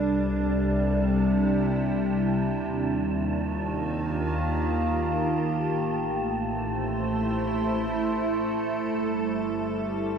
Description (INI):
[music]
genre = ambient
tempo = free time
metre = none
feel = none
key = unclear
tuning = A4 = 440 Hz
[part]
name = evolving wavetable pad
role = sustained chords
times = 0.0-10.2 s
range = C3 to C5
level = -25 LUFS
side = equal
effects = chorus, built-in reverb
[part]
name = warm studio double bass section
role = bass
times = 0.0-10.2 s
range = G1 to Eb2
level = -32 LUFS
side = equal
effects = none
[part]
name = wind-like tuned noise texture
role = texture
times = 0.0-10.2 s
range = A5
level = -37 LUFS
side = right 4 dB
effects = built-in reverb
[sound]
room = wet spring reverb, RT60 2.2 s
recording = none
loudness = -24 LUFS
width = side -7 dB against mid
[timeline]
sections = 0.0-10.2 A section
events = fade-in on synth texture 0.0-10.2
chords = 0.0 C; 2.6 Ebmaj9; 5.8 Am7; 8.9 G